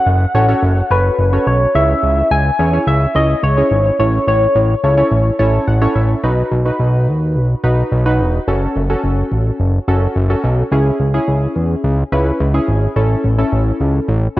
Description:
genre	synth-pop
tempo	107 BPM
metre	4/4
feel	straight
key	F# dorian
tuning	A4 = 440 Hz
part	soft struck synth lead	melody	0.0-5.9 s	B4 to G#5	-16 LUFS	left 1 dB	chorus, phaser, digital delay
part	warm analog keys	accompaniment	0.0-14.4 s	C#4 to A5	-18 LUFS	equal	chorus
part	fat analog bass	bass	0.1-14.4 s	E1 to E2	-14 LUFS	equal	none
room	light reverb, digital ambience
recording	worn, warbling old tape, cassette tape, warbly pitch drift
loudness	-12 LUFS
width	side -16 dB against mid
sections	0.0-6.2 A section; 6.2-14.4 B section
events	synth keys fill 5.1-6.2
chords	0.0 F#m; 1.7 C#m; 4.0 A; 6.2 B; 8.5 F#m; 10.7 C#m; 13.0 A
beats	0.07 0.63 1.19 | 1.75 2.31 2.87 3.43 | 3.99 4.55 5.11 5.67 | 6.24 6.79 7.36 7.92 | 8.48 9.04 9.60 10.16 | 10.72 11.28 11.84 12.40 | 12.96 13.52 14.09

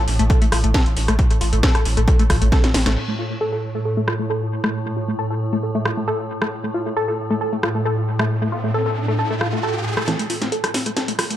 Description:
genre	driving peak-time techno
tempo	135 BPM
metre	4/4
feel	straight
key	unclear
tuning	A4 = 440 Hz
part	tight sequenced synth	riff	0.0-11.4 s	A3 to A4	-24 LUFS	left 1 dB	chorus, sidechain pumping, dub echo
part	warm sub bass	bass	0.0-3.0 s	A1	-20 LUFS	equal	overdrive, sidechain pumping, low-pass filter
part	swarming drone	drone	0.0-10.1 s	A2	-25 LUFS	equal	built-in reverb, sidechain pumping
part	techno drum kit	drums	0.1-11.4 s	crash cymbal, hi-hat, rim click, snare drum	-24 LUFS	equal	sidechain pumping on hats, low-pass filter on hats, low-pass filter on snare, sidechain pumping on cymbals, low-pass filter on cymbals, low-pass filter on room, dub echo
part	electronic kick drum	drums	0.3-2.6 s	none	-17 LUFS	equal	none
part	riser	sound effects	8.0-11.4 s	none	-30 LUFS	equal	none
part	wavetable chord stab	stabs	10.1-10.2 s	E3 to A4	-29 LUFS	right 4 dB	sidechain pumping, dub echo
room	light reverb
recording	echo-heavy mix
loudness	-18 LUFS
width	side -12 dB against mid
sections	0.0-3.0 A section; 3.0-10.1 B section; 10.1-11.4 C section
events	drum fill 2.5-3.0, 10.1-11.4; filter sweep on drum 3.0-10.1; filter sweep on synth arpeggio sound 3.0-10.1, 10.1-11.4; riser 8.0-10.1, 10.1-11.4; build-up 10.1-11.4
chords	0.0 A5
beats	0.30 0.74 | 1.19 1.63 2.08 2.52 | 2.97 3.41 3.85 4.30 | 4.74 5.19 5.63 6.08 | 6.52 6.97 7.41 7.86 | 8.30 8.74 9.19 9.63 | 10.08 10.52 10.97

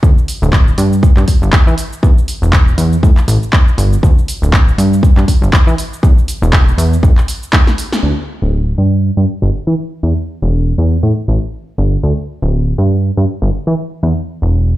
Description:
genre	filtered disco house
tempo	120 BPM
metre	4/4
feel	swing 57% on 16ths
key	unclear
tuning	A4 = 439 Hz
part	plucky analog bass	bass	0.0-14.7 s	D1 to E3	-12 LUFS	equal	tube saturation, sidechain pumping, low-pass filter
part	electronic kick drum	drums	0.0-7.6 s	none	-9 LUFS	equal	none
part	punchy analog drum machine	drums	0.0-8.1 s	cabasa, crash cymbal, handclaps, hi-hat, snare drum	-19 LUFS	equal	sidechain pumping on perc, low-pass filter on perc, sidechain pumping on hats, low-pass filter on hats, low-pass filter on snare, sidechain pumping on cymbals, low-pass filter on cymbals
room	little or no reverb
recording	played on a big sound system in a bare room, large studio reverb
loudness	-10 LUFS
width	side -16 dB against mid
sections	0.0-8.0 A section; 8.0-14.8 B section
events	drum fill 7.5-8.0; band accent 7.9; filter sweep on analog synth bass 8.0-14.8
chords	none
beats	| 0.03 0.53 1.03 1.53 | 2.03 2.53 3.03 3.53 | 4.03 4.53 5.03 5.53 | 6.03 6.53 7.03 7.53 | 8.03 8.53 9.03 9.53 | 10.03 10.53 11.03 11.53 | 12.03 12.53 13.03 13.53 | 14.03 14.53

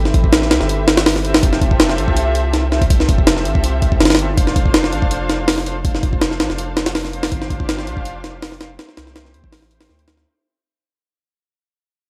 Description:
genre	drum and bass, jungle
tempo	163 BPM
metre	4/4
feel	straight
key	D dorian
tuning	A4 = 445 Hz
part	muted studio string section	sustained chords	0.0-10.2 s	A3 to F5	-26 LUFS	equal	none
part	soft dub sub bass	bass	0.0-10.2 s	F1 to E2	-24 LUFS	equal	none
part	jungle sampler-style drum kit	drums	0.1-10.3 s	hi-hat, kick drum, snare drum	-17 LUFS	equal	none
room	little or no reverb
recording	dry, gritty hardware recording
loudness	-16 LUFS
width	mono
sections	0.0-10.3 A section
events	drop 0.0-10.3; fade-out 4.4-10.3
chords	0.0 Am9; 1.4 Fmaj9; 4.4 Dm7/F; 7.3 G7sus4; 8.8 C6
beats	0.33 0.69 1.06 | 1.43 1.80 2.17 2.53 | 2.90 3.27 3.64 4.01 | 4.37 4.74 5.11 5.48 | 5.85 6.21 6.58 6.95 | 7.32 7.69 8.05 8.42 | 8.79 9.16 9.53 9.90

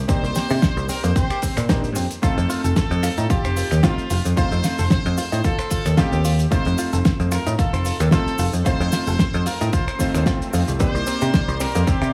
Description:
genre	nu-disco, nu disco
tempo	112 BPM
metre	4/4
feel	swing 55% on 16ths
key	unclear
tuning	A4 = 444 Hz
part	picked electric bass	bass	0.0-12.1 s	F1 to C3	-23 LUFS	equal	sidechain pumping
part	brilliant trumpet section	melody	0.1-12.1 s	F4 to C5	-31 LUFS	equal	analog delay
part	warm electric grand piano	accompaniment	0.1-12.1 s	A3 to D5	-30 LUFS	equal	sidechain pumping, tape echo
part	direct-recorded clean electric guitar	riff	0.1-12.1 s	Bb3 to C5	-32 LUFS	equal	subtle chorus, tape echo
part	damped 70s drum kit	drums	0.1-12.1 s	cabasa, finger snaps, hi-hat, ride cymbal, snare drum	-27 LUFS	equal	none
part	electronic kick drum	drums	0.1-12.0 s	none	-24 LUFS	equal	none
part	cabasa	percussion	0.1-12.0 s	none	-39 LUFS	equal	none
part	swell	sound effects	10.0-10.8 s	none	-40 LUFS	equal	none
part	lush unison pad	sustained chords	10.8-12.1 s	Bb4 to C6	-35 LUFS	equal	chorus, sidechain pumping
room	studio ambience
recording	echo-heavy mix, studio reverb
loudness	-20 LUFS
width	mono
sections	0.0-12.1 A section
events	none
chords	0.0 Cm9; 2.2 F7; 10.8 Cm9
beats	| 0.09 0.62 1.16 1.69 | 2.23 2.77 3.30 3.84 | 4.37 4.91 5.44 5.98 | 6.52 7.05 7.59 8.12 | 8.66 9.19 9.73 10.27 | 10.80 11.34 11.87

